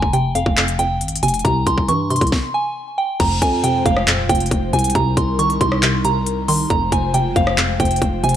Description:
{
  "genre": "hip hop, trap",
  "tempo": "137 BPM",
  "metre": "4/4",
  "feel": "half-time",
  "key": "F minor",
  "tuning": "A4 = 440 Hz",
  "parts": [
    { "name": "soft synth bell", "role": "melody", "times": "0.0-8.4 s", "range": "F5 to Db6", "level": "-20 LUFS", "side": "right 2 dB", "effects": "chorus, ping-pong delay" },
    { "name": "hollow square pluck", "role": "accompaniment", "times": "0.0-8.4 s", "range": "F2 to E3", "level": "-22 LUFS", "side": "equal", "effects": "chorus" },
    { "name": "growling 808-style bass", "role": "bass", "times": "0.0-8.4 s", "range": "Eb1 to G2", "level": "-22 LUFS", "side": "left 1 dB", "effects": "none" },
    { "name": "trap drum kit", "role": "drums", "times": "0.0-8.4 s", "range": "crash cymbal, handclaps, hi-hat, kick drum, rim click, snare drum", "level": "-20 LUFS", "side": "left 1 dB", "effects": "overdrive, vintage 12-bit sampler grit" },
    { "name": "airy breathy pad", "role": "sustained chords", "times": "3.3-8.4 s", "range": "C3 to C5", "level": "-25 LUFS", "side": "left 1 dB", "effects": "chorus" }
  ],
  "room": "digital ambience",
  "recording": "none",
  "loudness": "-15 LUFS",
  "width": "side -10 dB against mid",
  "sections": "0.0-3.2 A section; 3.2-8.4 B section",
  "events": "stop 2.3-3.2",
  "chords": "0.0 Fm; 1.4 C; 3.2 Fm; 5.0 Cm7; 6.7 Fm"
}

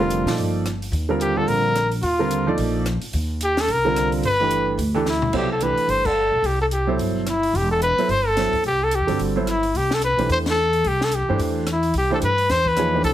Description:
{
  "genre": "modal jazz",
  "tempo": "218 BPM",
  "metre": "4/4",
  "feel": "swing 59% on 8ths",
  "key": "Eb lydian, C lydian from 5.3 s",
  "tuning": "A4 = 439 Hz",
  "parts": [
    { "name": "warm trumpet", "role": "melody", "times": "0.0-13.1 s", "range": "E4 to C5", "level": "-20 LUFS", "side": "left 1 dB", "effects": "none" },
    { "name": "warm concert grand piano", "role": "accompaniment", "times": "0.0-13.1 s", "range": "B2 to D5", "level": "-23 LUFS", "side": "right 3 dB", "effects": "none" },
    { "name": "upright bass", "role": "bass", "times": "0.0-13.1 s", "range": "E1 to Bb2", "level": "-25 LUFS", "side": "equal", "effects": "none" },
    { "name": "compact cocktail drum kit", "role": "drums", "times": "0.1-13.1 s", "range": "crash cymbal, hi-hat, kick drum, ride cymbal, rim click, snare drum, toms", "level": "-31 LUFS", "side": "left 1 dB", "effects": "none" }
  ],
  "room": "moderate studio reverb, RT60 0.8 s",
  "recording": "heavily compressed radio sound, multiband compression",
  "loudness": "-18 LUFS",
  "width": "side -12 dB against mid",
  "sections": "0.0-5.3 A section; 5.3-13.1 B section",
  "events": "drum fill 5.1; band accent 6.0, 10.4",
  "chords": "0.0 Fsus2; 0.9 Eb69; 3.1 Fsus2/Eb; 4.2 Gadd9; 5.3 Cmaj9; 9.7 Amadd9"
}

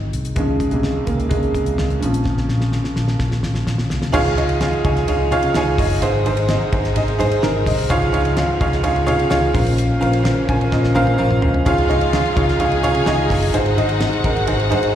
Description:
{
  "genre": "piano-driven pop",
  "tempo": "128 BPM",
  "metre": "4/4",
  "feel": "straight",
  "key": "Db major",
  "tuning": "A4 = 440 Hz",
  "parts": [
    { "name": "clear upright piano", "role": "accompaniment", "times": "0.0-14.9 s", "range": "Ab2 to Ab5", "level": "-18 LUFS", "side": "right 1 dB", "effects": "slapback echo" },
    { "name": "vintage muted fingered electric bass", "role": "bass", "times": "0.0-14.9 s", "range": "Gb1 to Db3", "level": "-20 LUFS", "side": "equal", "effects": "none" },
    { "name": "damped 70s drum kit", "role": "drums", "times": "0.1-14.9 s", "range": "crash cymbal, hi-hat, kick drum, ride cymbal, snare drum, toms", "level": "-24 LUFS", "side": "equal", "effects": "none" },
    { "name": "warm studio string section", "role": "sustained chords", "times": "4.1-14.9 s", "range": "C3 to Eb4", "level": "-29 LUFS", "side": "left 3 dB", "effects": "none" },
    { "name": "warm studio violin section", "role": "second line", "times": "11.7-14.9 s", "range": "F4 to Ab5", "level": "-24 LUFS", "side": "left 2 dB", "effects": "digital delay, slapback echo" }
  ],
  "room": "studio reverb",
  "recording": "live gig heard through the venue's PA, recital hall reverb",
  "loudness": "-15 LUFS",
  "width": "side -10 dB against mid",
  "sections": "0.0-4.1 A section; 4.1-14.9 B section",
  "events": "upright piano solo 0.0-4.1; drum fill 2.3-4.1, 10.7-11.7",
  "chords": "0.4 Dbadd9; 2.0 Bbmadd9; 4.1 Dbadd9; 6.0 Ab; 7.9 Dbadd9; 9.5 Bbmadd9; 11.7 Dbadd9; 13.5 Ab"
}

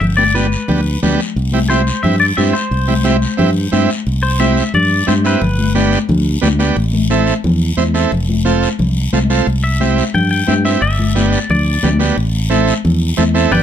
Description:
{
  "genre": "latin, cumbia",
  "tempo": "178 BPM",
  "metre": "4/4",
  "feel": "straight",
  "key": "C major",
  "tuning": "A4 = 439 Hz",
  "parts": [
    { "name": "twangy electric guitar", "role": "melody", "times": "0.0-5.7, 9.6-13.6 s", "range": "B4 to G5", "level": "-18 LUFS", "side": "left 3 dB", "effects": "spring reverb, slapback echo, plate reverb" },
    { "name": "fingered electric bass", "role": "bass", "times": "0.0-13.6 s", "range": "F1 to G2", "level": "-16 LUFS", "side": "equal", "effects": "none" },
    { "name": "congas", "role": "percussion", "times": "0.0-13.6 s", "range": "none", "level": "-18 LUFS", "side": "left 4 dB", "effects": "none" },
    { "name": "guiro", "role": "percussion", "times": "0.0-13.6 s", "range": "none", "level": "-27 LUFS", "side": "left 4 dB", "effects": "none" },
    { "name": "overdriven combo organ", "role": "accompaniment", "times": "0.2-13.6 s", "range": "B3 to C5", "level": "-17 LUFS", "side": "right 6 dB", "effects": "none" }
  ],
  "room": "light reverb",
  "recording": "close, detailed microphones",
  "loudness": "-12 LUFS",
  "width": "side -9 dB against mid",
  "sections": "0.0-4.1 A section; 4.1-13.6 B section",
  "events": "none",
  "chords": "0.0 G; 1.4 C; 5.4 G; 6.8 Am; 8.1 F; 9.5 C; 10.8 G; 12.2 Am"
}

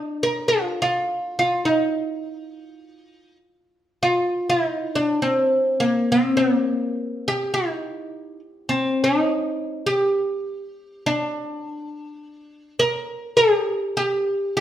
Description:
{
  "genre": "hawaiian",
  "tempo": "103 BPM",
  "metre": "4/4",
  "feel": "swing 57% on 8ths",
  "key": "Eb major",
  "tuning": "A4 = 445 Hz",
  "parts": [
    { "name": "oud", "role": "solo", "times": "0.0-14.6 s", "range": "Bb3 to Bb4", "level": "-20 LUFS", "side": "equal", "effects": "none" }
  ],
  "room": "moderate large studio reverb, RT60 1.1 s",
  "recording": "band playing live in one room",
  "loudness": "-20 LUFS",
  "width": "side -11 dB against mid",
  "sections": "0.0-4.0 A section; 4.0-14.6 B section",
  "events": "none",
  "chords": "none"
}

